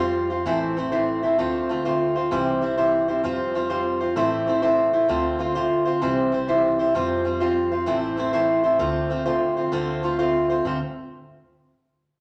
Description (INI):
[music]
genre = celtic folk, Celtic slide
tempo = 130 BPM (dotted quarters)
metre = 12/8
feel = straight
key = D minor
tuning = A4 = 440 Hz
[part]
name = fingerpicked swing-style acoustic guitar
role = accompaniment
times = 0.0-10.8 s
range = A2 to C5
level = -23 LUFS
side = equal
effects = none
[part]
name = upright bass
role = bass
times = 0.0-10.8 s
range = A1 to F2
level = -38 LUFS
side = equal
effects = none
[sound]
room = wet large studio reverb, RT60 1.4 s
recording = none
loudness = -23 LUFS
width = mono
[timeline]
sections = 0.0-10.7 A section; 10.7-12.2 B section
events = none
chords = 0.5 Am; 1.4 Dm7; 2.3 C; 3.2 Fsus2; 4.2 Am; 5.1 Dm7; 6.0 C; 6.9 Fsus2; 7.9 Am; 8.8 Dm7